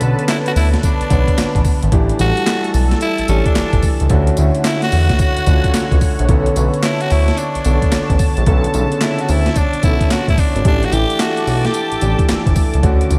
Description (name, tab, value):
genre	R&B, new jack swing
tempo	110 BPM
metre	4/4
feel	swing 64% on 16ths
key	B minor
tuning	A4 = 440 Hz
part	warm grand piano	accompaniment	0.0-13.2 s	C#3 to C#5	-22 LUFS	equal	none
part	sweeping resonant pad	sustained chords	0.0-13.2 s	C#4 to D6	-28 LUFS	equal	chorus
part	smooth synth bass	bass	0.0-13.2 s	G1 to E2	-19 LUFS	equal	none
part	breakbeat sampler-style drum kit	drums	0.0-13.2 s	handclaps, hi-hat, kick drum, snare drum, tambourine	-19 LUFS	equal	none
part	raspy tenor saxophone	melody	0.3-12.2 s	C#4 to G4	-25 LUFS	equal	tape echo
room	light reverb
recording	none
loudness	-15 LUFS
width	mono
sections	0.0-13.2 A section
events	none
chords	0.0 Bm9; 1.9 A7sus4; 4.1 Dmaj7; 6.3 Bm9; 10.6 A7sus4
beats	0.28 0.83 1.38 | 1.92 2.47 3.01 3.56 | 4.10 4.65 5.19 5.74 | 6.29 6.83 7.38 7.92 | 8.47 9.01 9.56 10.10 | 10.65 11.19 11.74 12.29 | 12.83